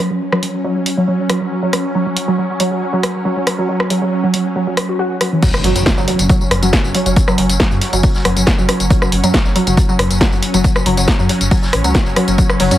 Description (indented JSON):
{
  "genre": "driving peak-time techno",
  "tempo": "138 BPM",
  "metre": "4/4",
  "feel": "straight",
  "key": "unclear",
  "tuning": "A4 = 439 Hz",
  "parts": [
    { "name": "warbly dusty pluck", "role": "riff", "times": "0.0-12.8 s", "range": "E3 to F#4", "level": "-18 LUFS", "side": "equal", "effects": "tube saturation, lush chorus, sidechain pumping, digital delay" },
    { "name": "swarming drone", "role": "drone", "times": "0.0-12.8 s", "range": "F#3 to C#4", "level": "-22 LUFS", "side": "equal", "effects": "built-in reverb, sidechain pumping" },
    { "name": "punchy analog drum machine", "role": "drums", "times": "0.3-12.8 s", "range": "crash cymbal, hi-hat, ride cymbal, rim click, snare drum, tambourine", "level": "-18 LUFS", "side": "equal", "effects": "sidechain pumping on perc, sidechain pumping on hats, sidechain pumping on cymbals" },
    { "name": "electronic kick drum", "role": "drums", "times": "5.4-12.5 s", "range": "none", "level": "-14 LUFS", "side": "equal", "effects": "overdrive" },
    { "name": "vintage brush drum kit", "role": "drums", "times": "5.4-12.7 s", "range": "hi-hat, snare drum", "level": "-31 LUFS", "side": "equal", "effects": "none" },
    { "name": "impact", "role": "sound effects", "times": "5.4-7.2 s", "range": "none", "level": "-24 LUFS", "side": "equal", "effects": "none" },
    { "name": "dark detuned saw bass", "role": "bass", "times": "5.6-12.8 s", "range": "F#1 to F#2", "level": "-19 LUFS", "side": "equal", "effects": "sidechain pumping" }
  ],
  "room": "light reverb",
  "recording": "heavily compressed radio sound, multiband compression",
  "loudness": "-12 LUFS",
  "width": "side -13 dB against mid",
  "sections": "0.0-5.4 A section; 5.4-12.8 B section",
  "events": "drop 5.4-12.8; impact 5.4-7.2",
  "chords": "0.0 F#5"
}